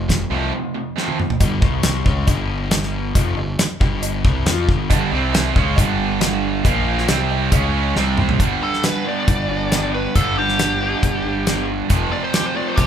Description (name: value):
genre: classic rock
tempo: 137 BPM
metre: 4/4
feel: straight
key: unclear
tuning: A4 = 440 Hz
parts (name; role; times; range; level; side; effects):
- distorted electric guitar; riff; 0.0-1.4, 4.9-12.9 s; F2 to C#4; -22 LUFS; right 8 dB; overdrive
- raw garage guitar; riff; 0.0-12.9 s; F2 to F4; -25 LUFS; left 3 dB; overdrive
- fuzz picked electric bass; bass; 0.0-12.9 s; F1 to F2; -23 LUFS; equal; overdrive
- damped 70s drum kit; drums; 0.1-12.9 s; hi-hat, kick drum, snare drum, toms; -19 LUFS; equal; none
- cowbell; percussion; 1.4-8.1 s; none; -34 LUFS; right 8 dB; none
- nasal lead guitar with a parked wah; melody; 8.6-12.9 s; G4 to D5; -22 LUFS; left 2 dB; overdrive
room: moderate large studio reverb, RT60 0.9 s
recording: band playing live in one room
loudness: -16 LUFS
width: side -9 dB against mid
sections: 0.0-1.4 A section; 1.4-8.4 B section; 8.4-12.9 C section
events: drum fill 1.0-1.4, 8.0-8.4; lead electric guitar solo 8.4-12.9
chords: 0.0 F; 1.4 G5; 1.6 C5; 2.1 G5; 5.1 C5; 5.6 G5; 6.6 Bb5; 7.1 C5; 7.5 C#5; 8.0 C5; 8.4 G; 11.9 F